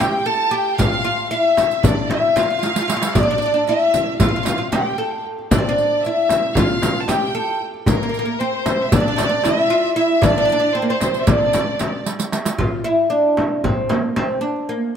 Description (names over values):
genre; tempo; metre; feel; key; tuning
Turkish makam ensemble; 229 BPM (eighths); 9/8; straight; D makam nihavent; A4 = 442 Hz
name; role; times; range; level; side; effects
oud; melody; 0.0-14.9 s; Bb3 to A4; -19 LUFS; equal; none
rich chamber violin section; second line; 0.0-12.1 s; Bb4 to A5; -23 LUFS; right 1 dB; none
darbuka; percussion; 0.0-14.8 s; none; -24 LUFS; equal; none
frame drum; percussion; 0.0-14.3 s; none; -21 LUFS; left 2 dB; none
riq; percussion; 0.0-12.6 s; none; -26 LUFS; right 4 dB; none
room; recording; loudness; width
moderate plate reverb, RT60 3.2 s; none; -16 LUFS; side -8 dB against mid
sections
0.0-12.6 A section; 12.6-15.0 B section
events
drum fill 2.6-3.1, 12.1-12.6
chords
none